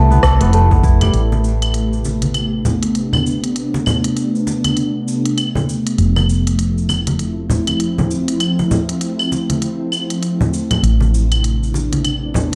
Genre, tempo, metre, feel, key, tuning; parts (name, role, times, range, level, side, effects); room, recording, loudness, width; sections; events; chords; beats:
organic downtempo; 99 BPM; 4/4; swing 60% on 16ths; A minor; A4 = 441 Hz
dark cello; melody; 0.0-0.5 s; A3; -34 LUFS; equal
ethereal airy pad; sustained chords; 0.1-12.6 s; C3 to G4; -22 LUFS; equal; ensemble chorus, built-in reverb, sidechain pumping
kora; arpeggios; 0.0-2.6 s; E3 to A4; -22 LUFS; equal; vintage 12-bit sampler grit, tape echo
woody fretless electric bass; bass; 0.0-12.6 s; F1 to C2; -18 LUFS; equal; sidechain pumping
organic electronic drum kit; drums; 0.1-12.6 s; claves, hi-hat, rim click, shaker; -26 LUFS; equal
congas; percussion; 0.1-12.6 s; -23 LUFS; equal
electronic kick drum; drums; 0.2-1.0 s; -18 LUFS; equal
moderate digital room reverb, RT60 1.1 s, digital ambience; dark, warm production; -17 LUFS; mono
0.0-1.1 A section; 1.1-12.6 B section
0.0 Fmaj9; 1.1 Am11; 6.0 Fmaj9; 10.8 Am11
0.53 | 1.14 1.74 2.35 2.96 | 3.56 4.17 4.77 5.38 | 5.99 6.59 7.20 7.80 | 8.41 9.02 9.62 10.23 | 10.83 11.44 12.05